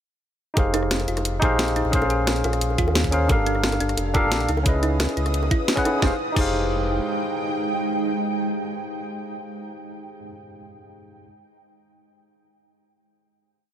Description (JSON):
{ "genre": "liquid drum and bass", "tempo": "176 BPM", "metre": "4/4", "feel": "straight", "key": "F minor", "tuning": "A4 = 442 Hz", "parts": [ { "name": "tine electric piano", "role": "accompaniment", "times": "0.5-11.3 s", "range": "Db4 to Gb5", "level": "-25 LUFS", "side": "left 1 dB", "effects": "overdrive, dub echo" }, { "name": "sub bass with octave", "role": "bass", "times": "0.6-7.0 s", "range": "F1 to Eb2", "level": "-25 LUFS", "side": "equal", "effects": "none" }, { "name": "drum and bass drum kit", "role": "drums", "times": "0.6-6.5 s", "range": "crash cymbal, hi-hat, rim click, snare drum", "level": "-26 LUFS", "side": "equal", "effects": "small room ambience" }, { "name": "electronic kick drum", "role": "drums", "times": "0.6-6.5 s", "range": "none", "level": "-22 LUFS", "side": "equal", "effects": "small room ambience" }, { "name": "bongos", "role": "percussion", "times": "0.6-5.9 s", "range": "none", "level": "-33 LUFS", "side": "equal", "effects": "none" }, { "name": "thumb-piano-like synth pluck", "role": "arpeggios", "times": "0.7-6.5 s", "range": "D4 to Ab4", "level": "-32 LUFS", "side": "right 4 dB", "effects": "chorus, cassette tape, dub echo" }, { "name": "ethereal airy pad", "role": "sustained chords", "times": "3.9-9.5 s", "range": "Ab3 to Eb6", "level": "-28 LUFS", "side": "right 1 dB", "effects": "ensemble chorus, built-in reverb, tremolo, sidechain pumping" } ], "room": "light reverb, digital ambience", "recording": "none", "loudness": "-20 LUFS", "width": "side -10 dB against mid", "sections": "0.6-6.0 drop; 6.0-8.8 final chord", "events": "drop 0.6-6.0", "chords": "0.6 Fm9; 1.9 Bbm9; 3.3 Gm9; 4.5 Dbm9; 6.0 Fm9", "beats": "| 0.57 0.91 1.25 1.59 | 1.93 2.27 2.62 2.96 | 3.30 3.64 3.98 4.32 | 4.66 5.00 5.34 5.68 | 6.02 6.37 6.71 7.05 | 7.39 7.73 8.07 8.41" }